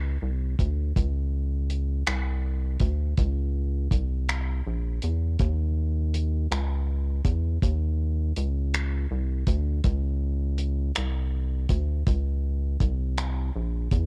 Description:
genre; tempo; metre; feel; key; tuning
slow six-eight R&B; 54 BPM (dotted quarters); 6/8; straight; unclear; A4 = 440 Hz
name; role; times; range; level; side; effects
rubbery square bass; bass; 0.0-14.1 s; Bb1 to Fb2; -28 LUFS; equal; none
cloth-damped thuddy drum kit; drums; 0.6-14.1 s; finger snaps, hi-hat, kick drum; -29 LUFS; equal; cassette tape
room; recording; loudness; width
little or no reverb; home recording on cassette; -27 LUFS; mono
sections
0.0-14.1 A section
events
kick muted 4.3-5.4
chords
none

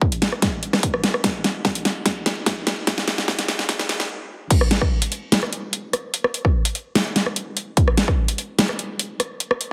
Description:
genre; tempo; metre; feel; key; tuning
dubstep; 147 BPM; 4/4; half-time; none; none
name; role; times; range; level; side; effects
electronic kick drum; drums; 0.0-8.2 s; none; -23 LUFS; equal; none
dubstep drum kit; drums; 0.1-9.7 s; crash cymbal, hi-hat, rim click, snare drum; -23 LUFS; equal; none
room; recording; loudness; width
moderate plate reverb, RT60 1.6 s, digital ambience; heavily compressed radio sound, high-pass filter; -22 LUFS; mono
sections
0.0-4.5 A section; 4.5-9.7 B section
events
build-up 0.0-4.5; drum fill 0.0-4.1; filter sweep 0.0-4.5; stop 4.1-4.5; drop 4.5-9.7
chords
none

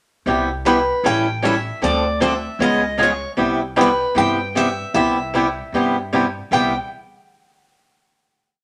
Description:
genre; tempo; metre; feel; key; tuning
acoustic string swing (jazz manouche); 153 BPM; 4/4; swing 62% on 8ths; C major; A4 = 440 Hz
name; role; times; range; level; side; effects
picked swing-style acoustic guitar; accompaniment; 0.3-6.7 s; C3 to A4; -20 LUFS; equal; none
upright bass; bass; 0.3-6.7 s; A1 to G2; -31 LUFS; equal; none
picked steel-string acoustic guitar; melody; 0.7-6.8 s; B4 to G5; -24 LUFS; equal; none
room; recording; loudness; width
moderate studio reverb, RT60 0.7 s; none; -19 LUFS; mono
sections
0.3-6.5 A section; 6.5-8.1 final chord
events
none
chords
0.3 Cmaj7; 1.0 A7; 1.8 Dm7; 2.6 Db9; 3.4 Cmaj7

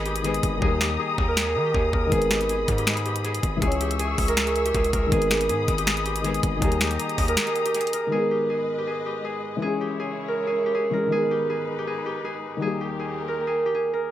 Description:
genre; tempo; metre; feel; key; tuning
hip hop, trap; 160 BPM; 4/4; half-time; G# harmonic minor; A4 = 439 Hz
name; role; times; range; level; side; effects
concert harp; melody; 0.0-14.1 s; G4 to A#4; -25 LUFS; right 1 dB; low-pass filter, dub echo
felt-muted upright piano; accompaniment; 0.0-14.1 s; D#3 to C#5; -30 LUFS; left 4 dB; low-pass filter
muted studio string section; sustained chords; 0.0-14.1 s; D#2 to E6; -31 LUFS; left 2 dB; none
distorted 808-style bass; bass; 0.0-7.4 s; G#1 to D#3; -28 LUFS; equal; distortion
trap drum kit; drums; 0.1-8.0 s; finger snaps, hi-hat, kick drum, snare drum; -25 LUFS; equal; dub echo
room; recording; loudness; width
light reverb, studio reverb; echo-heavy mix; -22 LUFS; side -12 dB against mid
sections
0.0-8.1 A section; 8.1-14.1 B section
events
hi-hats muted 0.6-2.1; kick muted 7.4-8.1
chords
0.0 G#m; 0.6 D#; 2.1 G#m; 3.6 C#m; 5.1 G#m; 6.6 D#; 8.1 G#m; 9.6 C#m; 11.1 G#m; 12.6 D#

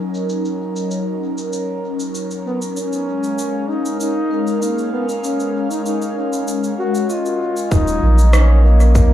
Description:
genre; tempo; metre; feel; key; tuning
ambient dub; 97 BPM; 4/4; straight; Eb minor; A4 = 441 Hz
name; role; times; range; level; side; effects
airy breathy pad; sustained chords; 0.0-9.1 s; Gb3 to F5; -22 LUFS; left 2 dB; chorus, phaser
electronic cabasa and rim click; drums; 0.1-9.1 s; none; -29 LUFS; equal; low-pass filter on perc, low-pass filter on snare, low-pass filter on toms, low-pass filter on room, dub echo
dark trombone; melody; 2.5-9.1 s; Bb3 to Gb4; -22 LUFS; equal; dub echo
vibraphone with soft mallets; arpeggios; 4.3-9.1 s; Bb4 to Eb5; -27 LUFS; right 2 dB; dub echo
round analog bass; bass; 7.7-9.1 s; Eb1 to Bb1; -11 LUFS; equal; none
electronic kick drum; drums; 7.7-9.1 s; none; -15 LUFS; equal; none
room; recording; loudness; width
light reverb; studio reverb; -16 LUFS; side -12 dB against mid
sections
0.0-7.7 A section; 7.7-9.1 B section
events
filter sweep on analog synth pad 0.0-7.7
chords
0.0 Ebm7; 2.8 Bbm7; 7.7 Ebm7

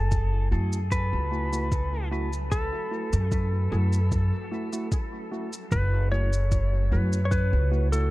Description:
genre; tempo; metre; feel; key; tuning
ambient dub; 75 BPM; 4/4; straight; F# minor; A4 = 442 Hz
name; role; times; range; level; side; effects
clean lap steel guitar; melody; 0.0-8.1 s; A4 to C#5; -32 LUFS; left 1 dB; dub echo
granular cloud pad; sustained chords; 0.0-8.1 s; F#3 to G#5; -46 LUFS; equal; none
upright bass; bass; 0.0-8.1 s; F#1 to F#2; -24 LUFS; equal; none
electronic kick drum; drums; 0.1-7.5 s; none; -28 LUFS; equal; overdrive
shaker; drums; 0.1-8.1 s; none; -41 LUFS; equal; overdrive, dub echo
bell-like tine electric piano; stabs; 0.5-8.1 s; A3 to F#4; -35 LUFS; right 1 dB; low-pass filter, dub echo
room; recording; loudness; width
digital ambience; dark, warm production; -23 LUFS; side -18 dB against mid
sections
0.0-8.1 A section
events
filter sweep on tine electric piano 0.0-8.1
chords
0.0 F#m7

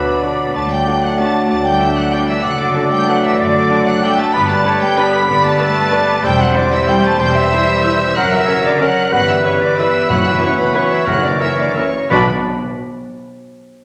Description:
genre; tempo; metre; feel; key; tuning
classical, orchestral ballroom waltz; 166-204 BPM; 3/4; rubato; B minor; A4 = 439 Hz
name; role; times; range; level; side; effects
warm symphonic violin section; melody; 0.0-12.3 s; B5 to B6; -28 LUFS; equal; none
clear clarinet; second line; 0.0-12.2 s; A4 to F#5; -28 LUFS; equal; none
mellow flute section; second line; 0.0-12.3 s; B4 to B5; -22 LUFS; equal; none
warm oboe; second line; 0.0-12.2 s; A#4 to B5; -24 LUFS; equal; none
warm symphonic violin section; second line; 0.0-12.3 s; B4 to B5; -27 LUFS; equal; none
clear bassoon; accompaniment; 0.0-12.2 s; B2 to G3; -25 LUFS; equal; none
mellow French horn section; sustained chords; 0.0-12.2 s; A#3 to G4; -26 LUFS; equal; none
warm trombone section; sustained chords; 0.0-12.2 s; B2 to B3; -26 LUFS; equal; none
mellow trumpet section; stabs; 0.0-12.2 s; A#4 to D5; -23 LUFS; equal; none
clear symphonic cello section; bass; 0.0-12.3 s; B2 to B3; -26 LUFS; equal; none
warm symphonic viola section; accompaniment; 0.2-12.3 s; C#4 to C5; -27 LUFS; equal; none
rich symphonic double bass section; bass; 0.5-12.3 s; E1 to D2; -26 LUFS; equal; none
timpani; percussion; 10.1-12.3 s; F#2 to B2; -25 LUFS; equal; none
room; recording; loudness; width
wet scoring stage reverb, RT60 1.5 s; none; -14 LUFS; mono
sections
0.0-12.1 A section; 12.1-13.1 B section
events
none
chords
0.0 Bm; 0.5 D; 2.4 D/F#; 4.3 G; 6.2 C/E; 8.2 F#; 9.1 Em/G; 10.1 F#7sus4; 11.1 F#7; 12.1 Bm

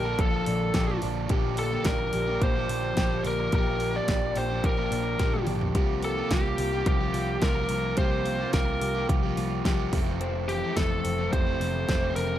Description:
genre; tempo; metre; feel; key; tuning
jangly indie pop; 108 BPM; 4/4; straight; C mixolydian; A4 = 440 Hz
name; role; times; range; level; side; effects
biting lead guitar; melody; 0.0-12.4 s; G4 to D5; -30 LUFS; equal; overdrive, slapback echo
overdriven semi-hollow guitar; accompaniment; 0.0-12.4 s; F2 to A4; -33 LUFS; right 7 dB; none
twelve-string electric guitar; arpeggios; 0.0-12.4 s; F2 to A4; -32 LUFS; left 7 dB; slapback echo
vintage muted picked electric bass; bass; 0.0-12.4 s; F1 to C2; -31 LUFS; equal; none
pop drum kit; drums; 0.2-12.3 s; hi-hat, kick drum, snare drum, toms; -28 LUFS; equal; none
room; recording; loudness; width
light reverb, digital ambience; none; -24 LUFS; side -12 dB against mid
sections
0.0-12.4 A section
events
drum fill 5.2-5.8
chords
0.0 Bbmaj7; 1.3 Gm7/Bb; 5.8 C7sus4; 9.9 Fmaj7

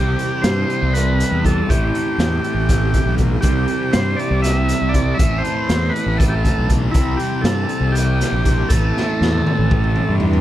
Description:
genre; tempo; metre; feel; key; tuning
psychedelic rock; 239 BPM (eighths); 7/8; straight; A minor; A4 = 436 Hz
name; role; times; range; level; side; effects
combo organ; melody; 0.0-10.2 s; E4 to E5; -23 LUFS; equal; tape echo
mellow tonewheel organ; sustained chords; 0.0-10.4 s; E3 to E4; -29 LUFS; right 4 dB; slow rotary speaker
fuzz guitar; riff; 0.0-10.4 s; A2 to C4; -22 LUFS; equal; distortion, phaser
fuzz fingered electric bass; bass; 0.0-10.4 s; A1 to G2; -20 LUFS; equal; overdrive
raw garage drum kit; drums; 0.2-10.4 s; hi-hat, kick drum, snare drum, toms; -20 LUFS; equal; none
room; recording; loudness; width
small room ambience; none; -15 LUFS; side -13 dB against mid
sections
0.0-10.4 A section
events
drum fill 9.0-10.4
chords
0.0 C; 1.7 Am; 3.4 C; 5.2 Am; 6.9 C; 8.7 Am

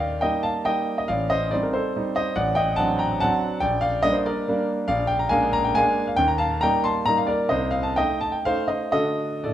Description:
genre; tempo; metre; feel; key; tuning
classical, romantic triple-time dance for piano with dotted rhythms; 113-152 BPM; 3/4; rubato; unclear; A4 = 440 Hz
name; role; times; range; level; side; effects
clear concert grand piano; solo; 0.0-9.5 s; A1 to C6; -20 LUFS; equal; none
room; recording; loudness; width
moderate recital hall reverb, RT60 1.5 s; none; -20 LUFS; side -11 dB against mid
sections
0.0-9.5 A section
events
none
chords
0.0 Eb; 1.1 Am7b5; 2.4 D7/A; 3.6 Gm/Bb; 4.9 Bb7; 6.2 Eb; 7.5 Adim/C; 8.9 D

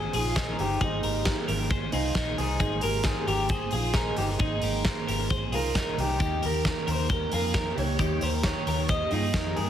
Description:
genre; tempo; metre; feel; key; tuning
jangly indie pop; 134 BPM; 4/4; straight; Ab major; A4 = 440 Hz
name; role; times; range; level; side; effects
electric guitar through a small old amp; melody; 0.0-9.7 s; Eb4 to Eb5; -31 LUFS; right 1 dB; slapback echo
fingerpicked steel-string acoustic guitar; accompaniment; 0.0-9.7 s; Eb3 to C5; -34 LUFS; right 8 dB; none
twelve-string electric guitar; arpeggios; 0.0-9.7 s; Eb4 to C5; -32 LUFS; left 4 dB; phaser, slapback echo
vintage muted fingered electric bass; bass; 0.0-9.7 s; G1 to G2; -31 LUFS; equal; tube saturation
big rock drum kit; drums; 0.1-9.7 s; hi-hat, kick drum, snare drum; -29 LUFS; equal; none
room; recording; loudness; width
light reverb; heavily compressed radio sound; -24 LUFS; side -10 dB against mid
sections
0.0-9.7 A section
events
none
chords
0.0 Abadd9; 6.2 Eb

